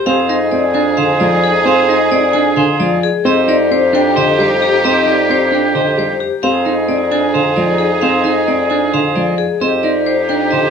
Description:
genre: classical, minimalist pattern music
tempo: 264 BPM (eighths)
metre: 7/8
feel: straight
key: F dorian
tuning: A4 = 442 Hz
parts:
  - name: vibraphone with hard mallets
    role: melody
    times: 0.0-10.7 s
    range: G4 to Ab5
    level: -17 LUFS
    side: left 8 dB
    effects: none
  - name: clean electric guitar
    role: arpeggios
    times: 0.0-10.7 s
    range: D4 to C5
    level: -18 LUFS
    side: right 7 dB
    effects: none
  - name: clear oboe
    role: second line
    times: 0.1-10.7 s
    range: G4 to Ab4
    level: -19 LUFS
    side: right 4 dB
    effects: none
  - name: dark baby grand piano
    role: accompaniment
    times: 0.1-10.7 s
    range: D3 to C4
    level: -19 LUFS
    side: right 1 dB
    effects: none
  - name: rich symphonic violin section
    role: sustained chords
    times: 0.1-10.7 s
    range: Eb4 to Ab4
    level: -22 LUFS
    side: left 2 dB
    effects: none
  - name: mellow bassoon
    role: bass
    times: 0.1-10.7 s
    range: F2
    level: -19 LUFS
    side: right 1 dB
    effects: none
room: moderate large studio reverb, RT60 1.4 s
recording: close, detailed microphones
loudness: -11 LUFS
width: side -6 dB against mid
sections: 0.1-10.7 A section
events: none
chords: 0.1 Fm7; 3.2 Ebmaj7/F; 6.4 Fm7; 9.6 Ebmaj7/F

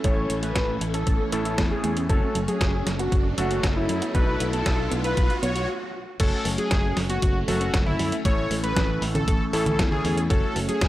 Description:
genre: italo disco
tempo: 117 BPM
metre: 4/4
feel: straight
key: F# minor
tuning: A4 = 439 Hz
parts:
  - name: wide unison lead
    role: melody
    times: 0.0-10.9 s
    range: E4 to C#5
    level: -28 LUFS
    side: equal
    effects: analog delay
  - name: phased string machine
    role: sustained chords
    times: 0.0-10.9 s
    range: E3 to D4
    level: -31 LUFS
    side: equal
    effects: ensemble chorus, phaser
  - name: wide unison pluck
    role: arpeggios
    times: 0.0-10.9 s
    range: F#3 to B4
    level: -34 LUFS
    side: right 2 dB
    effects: none
  - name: warm electric grand piano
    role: stabs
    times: 0.0-10.9 s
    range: A2 to C#5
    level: -32 LUFS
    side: left 2 dB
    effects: low-pass filter
  - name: fingered electric bass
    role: bass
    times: 0.0-10.9 s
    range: F#1 to F#2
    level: -29 LUFS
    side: equal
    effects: tube saturation
  - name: detuned 8-bit digital drum machine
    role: drums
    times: 0.0-10.9 s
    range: congas, crash cymbal, hi-hat, snare drum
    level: -29 LUFS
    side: equal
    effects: high-pass filter on hats, studio reverb, high-pass filter on snare, high-pass filter on toms, high-pass filter on cymbals, high-pass filter on perc
  - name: electronic kick drum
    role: drums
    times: 0.0-10.9 s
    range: none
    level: -23 LUFS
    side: equal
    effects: studio reverb
  - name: riser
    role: sound effects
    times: 1.0-5.7 s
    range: none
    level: -35 LUFS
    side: equal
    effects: none
room: digital ambience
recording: dry, gritty hardware recording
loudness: -21 LUFS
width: side -15 dB against mid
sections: 0.0-6.2 A section; 6.2-10.9 B section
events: filter sweep on analog synth lead 0.0-6.2; riser 1.0-5.7; stop 5.7-6.2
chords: 0.0 A; 2.1 F#m; 4.1 Bm7; 6.2 F#m; 8.2 A; 10.3 F#m

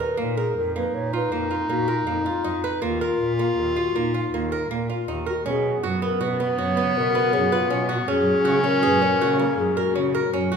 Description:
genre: contemporary instrumental, chamber music in an uneven meter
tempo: 160 BPM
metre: 7/4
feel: straight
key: unclear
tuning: A4 = 440 Hz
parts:
  - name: mellow hollow wooden-headed alto flute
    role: melody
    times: 0.0-10.5 s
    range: Eb4 to C#5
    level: -25 LUFS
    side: left 3 dB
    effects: none
  - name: flamenco guitar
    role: arpeggios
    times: 0.0-10.6 s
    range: Bb3 to Cb5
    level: -27 LUFS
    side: right 4 dB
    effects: none
  - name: warm clarinet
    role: second line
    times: 0.2-10.4 s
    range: B3 to F4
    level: -25 LUFS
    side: left 2 dB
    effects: none
  - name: dark cello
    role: bass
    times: 0.2-10.6 s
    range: Eb2 to Db3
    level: -28 LUFS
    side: right 3 dB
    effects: none
  - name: warm symphonic string section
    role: sustained chords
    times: 5.5-10.6 s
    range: Bb2 to B3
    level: -32 LUFS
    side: equal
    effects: none
room: wet recital hall reverb, RT60 1.5 s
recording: minimal, uncompressed stereo recording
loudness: -20 LUFS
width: side -6 dB against mid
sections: 0.0-5.5 A section; 5.5-10.6 B section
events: none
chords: 0.2 Bbsus4; 2.8 Ebsus2; 5.5 Bsus2; 8.1 Gbadd9

